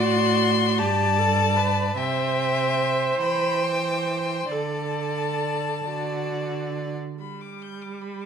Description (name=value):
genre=classical, slow romantic movement for string quartet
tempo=44-52 BPM (dotted quarters)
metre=6/8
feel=rubato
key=G major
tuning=A4 = 443 Hz
part: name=rich violin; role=melody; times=0.0-8.3 s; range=G5 to G6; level=-27 LUFS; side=left 7 dB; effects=none
part: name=rich violin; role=second line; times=0.0-7.0 s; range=D5 to G5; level=-29 LUFS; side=left 4 dB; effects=none
part: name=warm viola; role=accompaniment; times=0.0-8.3 s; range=G3 to C5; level=-27 LUFS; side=right 3 dB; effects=none
part: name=warm cello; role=bass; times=0.0-7.0 s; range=G2 to E3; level=-27 LUFS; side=right 5 dB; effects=none
room=moderate recital hall reverb, RT60 1.4 s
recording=minimal, uncompressed stereo recording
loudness=-21 LUFS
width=side -7 dB against mid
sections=0.0-7.2 A section; 7.2-8.3 B section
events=none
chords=0.0 D7/A; 0.8 G; 2.0 C; 4.5 D5; 5.9 D; 7.2 G